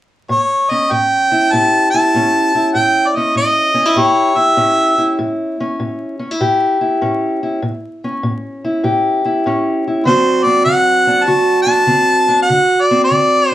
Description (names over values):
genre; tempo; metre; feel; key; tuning
acoustic country blues, solo or duo; 98 BPM; 4/4; swing 66% on 8ths; A mixolydian; A4 = 437 Hz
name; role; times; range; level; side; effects
clear harmonica; melody; 0.3-5.2, 10.1-13.5 s; C5 to A5; -12 LUFS; equal; none
fingerpicked steel-string acoustic guitar; accompaniment; 0.3-13.5 s; A2 to G4; -15 LUFS; equal; none
room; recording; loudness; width
wet studio ambience, RT60 0.5 s; heard from further back in the room, vinyl crackle; -12 LUFS; side -13 dB against mid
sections
0.3-13.5 A section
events
none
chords
0.3 A7; 10.0 D7